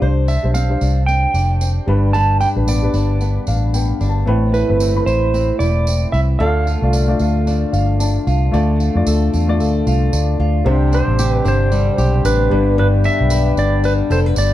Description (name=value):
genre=acoustic pop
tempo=113 BPM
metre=4/4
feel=swing 60% on 16ths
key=C major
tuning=A4 = 441 Hz
part: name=dark upright piano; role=accompaniment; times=0.0-14.5 s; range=G3 to B5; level=-23 LUFS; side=left 2 dB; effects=none
part: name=flamenco guitar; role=accompaniment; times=0.0-14.5 s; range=G2 to C5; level=-21 LUFS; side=left 1 dB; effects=none
part: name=vintage muted fingered electric bass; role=bass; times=0.0-14.5 s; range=E1 to F2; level=-16 LUFS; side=equal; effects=none
part: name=clean lap steel guitar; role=melody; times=0.3-14.5 s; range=B4 to A5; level=-21 LUFS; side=right 3 dB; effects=none
part: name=tambourine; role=percussion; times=0.3-14.5 s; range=none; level=-32 LUFS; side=right 4 dB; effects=none
part: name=pedal harmonium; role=sustained chords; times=10.7-14.5 s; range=D3 to G4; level=-25 LUFS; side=left 2 dB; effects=none
room=little or no reverb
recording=dark, warm production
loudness=-14 LUFS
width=side -13 dB against mid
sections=0.0-8.5 A section; 8.5-10.7 B section; 10.7-14.5 C section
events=upright piano fill 3.2-4.3, 7.5-8.5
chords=0.0 Csus2; 1.9 G; 4.3 Amadd9; 6.4 Dm; 10.7 Csus2; 12.5 G